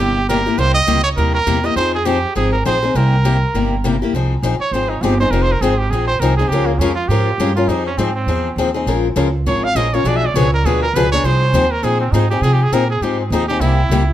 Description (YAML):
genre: acoustic string swing (jazz manouche)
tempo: 203 BPM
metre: 4/4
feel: swing 58% on 8ths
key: F minor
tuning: A4 = 441 Hz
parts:
  - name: brilliant trumpet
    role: melody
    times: 0.0-14.1 s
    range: Bb3 to F5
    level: -19 LUFS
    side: right 3 dB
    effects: tape echo
  - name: picked steel-string acoustic guitar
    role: accompaniment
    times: 0.0-14.0 s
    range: B2 to B4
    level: -19 LUFS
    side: left 5 dB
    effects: none
  - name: upright bass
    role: bass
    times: 0.0-14.1 s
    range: F1 to C3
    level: -18 LUFS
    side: right 1 dB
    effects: none
room: light reverb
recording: none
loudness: -14 LUFS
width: side -12 dB against mid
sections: 0.0-4.1 A section; 4.1-14.1 B section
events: trumpet solo 4.1-14.1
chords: 0.0 C7#9; 1.8 Fm7; 3.0 C7; 4.1 Fm7; 6.5 Bbm7; 7.7 Fm7; 8.9 Bbm7; 10.1 Bdim7; 11.2 Fm7; 13.6 C7